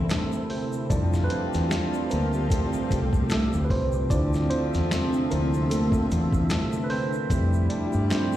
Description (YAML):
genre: R&B, neo-soul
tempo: 75 BPM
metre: 4/4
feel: swing 56% on 16ths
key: D minor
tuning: A4 = 442 Hz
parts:
  - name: tine electric piano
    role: accompaniment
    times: 0.0-8.4 s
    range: F3 to D5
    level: -28 LUFS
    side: right 2 dB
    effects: phaser, plate reverb, slapback echo
  - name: soft string machine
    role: sustained chords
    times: 0.0-8.4 s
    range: C3 to E5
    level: -31 LUFS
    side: equal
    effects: phaser, ensemble chorus
  - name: warm horn section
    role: stabs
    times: 0.0-8.4 s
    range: E3 to G4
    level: -33 LUFS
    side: left 3 dB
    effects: tape echo, plate reverb, slapback echo
  - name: deep dub fingered electric bass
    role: bass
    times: 0.0-8.1 s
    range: C2 to G2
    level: -25 LUFS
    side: equal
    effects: none
  - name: dusty soul sampler-style drum kit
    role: drums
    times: 0.1-8.3 s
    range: hi-hat, kick drum, snare drum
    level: -28 LUFS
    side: equal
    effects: none
  - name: finger snaps and egg shaker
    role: percussion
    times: 0.1-8.4 s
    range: none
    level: -44 LUFS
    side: left 6 dB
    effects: slapback echo
room: light reverb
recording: live gig heard through the venue's PA, recital hall reverb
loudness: -22 LUFS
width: side -13 dB against mid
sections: 0.0-8.4 A section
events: tine electric piano solo 0.0-8.4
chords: 0.0 Dm9; 0.9 Fmaj9; 4.1 Dm9; 7.3 Fmaj9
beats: 0.10 | 0.90 1.70 2.50 3.30 | 4.10 4.90 5.70 6.50 | 7.30 8.10